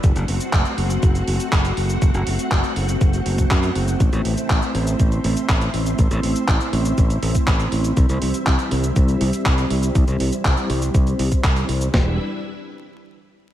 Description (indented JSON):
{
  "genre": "italo disco",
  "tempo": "121 BPM",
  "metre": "4/4",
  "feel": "straight",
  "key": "unclear",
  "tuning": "A4 = 440 Hz",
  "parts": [
    { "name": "string machine, full ensemble", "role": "sustained chords", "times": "0.0-12.2 s", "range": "G3 to F#5", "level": "-24 LUFS", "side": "equal", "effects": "ensemble chorus" },
    { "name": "modern bright fingered electric bass", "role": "bass", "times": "0.0-12.2 s", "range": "E1 to F#2", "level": "-21 LUFS", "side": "equal", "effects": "none" },
    { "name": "clean 12-bit digital drum machine", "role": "drums", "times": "0.0-12.1 s", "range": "kick drum, snare drum", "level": "-18 LUFS", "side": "equal", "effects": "none" },
    { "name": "clean 12-bit digital drum machine", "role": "drums", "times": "0.0-11.9 s", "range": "cabasa, handclaps, hi-hat", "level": "-26 LUFS", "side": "equal", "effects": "gated reverb" }
  ],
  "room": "digital ambience",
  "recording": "vinyl crackle",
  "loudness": "-17 LUFS",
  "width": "side -12 dB against mid",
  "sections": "0.0-11.9 A section; 11.9-13.5 B section",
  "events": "filter sweep on string machine 0.0-11.9",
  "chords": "0.0 F#dim; 4.0 Am; 8.0 C; 11.9 Em7"
}